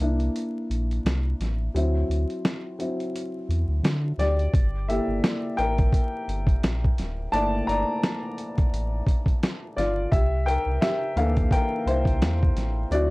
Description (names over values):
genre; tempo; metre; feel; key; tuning
lo-fi hip hop; 86 BPM; 4/4; swing 56% on 16ths; G dorian; A4 = 440 Hz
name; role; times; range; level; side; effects
dark upright piano; accompaniment; 0.0-13.1 s; E3 to Bb5; -27 LUFS; left 1 dB; plate reverb
sub bass with octave; bass; 0.0-13.1 s; D1 to D3; -25 LUFS; equal; none
dusty soul sampler-style drum kit; drums; 0.0-13.1 s; hi-hat, kick drum, snare drum; -24 LUFS; equal; none
room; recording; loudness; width
light reverb; dark, warm production, vinyl crackle; -22 LUFS; side -22 dB against mid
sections
0.0-13.1 A section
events
break 0.0-4.5; upright piano solo 0.0-13.1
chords
0.0 C7; 1.7 D9; 4.5 Gm69; 10.1 C7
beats
0.35 1.05 | 1.74 2.44 3.14 3.84 | 4.53 5.23 5.93 6.63 | 7.33 8.02 8.72 9.42 | 10.12 10.81 11.51 12.21 | 12.91